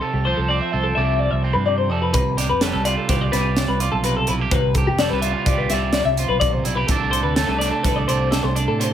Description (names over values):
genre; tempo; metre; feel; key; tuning
math rock and midwest emo; 126 BPM; 5/4; straight; unclear; A4 = 439 Hz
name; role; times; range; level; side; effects
electric guitar at the edge of break-up; accompaniment; 0.0-8.9 s; C3 to D5; -23 LUFS; right 6 dB; none
twelve-string electric guitar; arpeggios; 0.0-8.9 s; G4 to F5; -22 LUFS; left 4 dB; phaser, plate reverb
fingered electric bass; bass; 0.1-8.9 s; F1 to A2; -23 LUFS; equal; none
crisp fusion drum kit; drums; 2.1-8.9 s; hi-hat, kick drum, snare drum; -23 LUFS; equal; none
room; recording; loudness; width
light reverb; none; -17 LUFS; side -10 dB against mid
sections
0.0-8.9 A section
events
none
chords
0.0 Dm7/C; 2.1 G7; 6.9 Amadd11/C